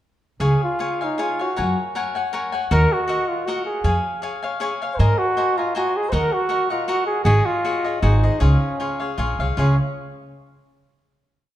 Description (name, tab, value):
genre	mexican folk, mariachi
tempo	157 BPM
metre	3/4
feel	swing 54% on 8ths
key	Db major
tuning	A4 = 440 Hz
part	dark trumpet	melody	0.4-9.8 s	Db4 to C5	-22 LUFS	right 1 dB	none
part	cavaquinho	accompaniment	0.4-9.8 s	F4 to Bb5	-25 LUFS	left 3 dB	none
part	upright bass	bass	0.4-9.8 s	Ab1 to Ab2	-18 LUFS	equal	none
room	moderate recital hall reverb, RT60 1.6 s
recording	dark, warm production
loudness	-18 LUFS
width	side -12 dB against mid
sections	0.4-9.6 A section; 9.6-10.7 final chord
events	none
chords	0.4 Db; 1.6 Gbadd9; 2.7 Ebm; 3.8 Db/F; 5.0 Abadd9; 6.1 Ebm; 7.3 Ab7sus4; 8.0 Ab7; 8.4 Db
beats	| 0.41 0.80 1.19 | 1.57 1.95 2.33 | 2.71 3.09 3.47 | 3.85 4.23 4.61 | 5.00 5.38 5.76 | 6.13 6.51 6.88 | 7.26 7.65 8.03 | 8.41 8.80 9.19 | 9.59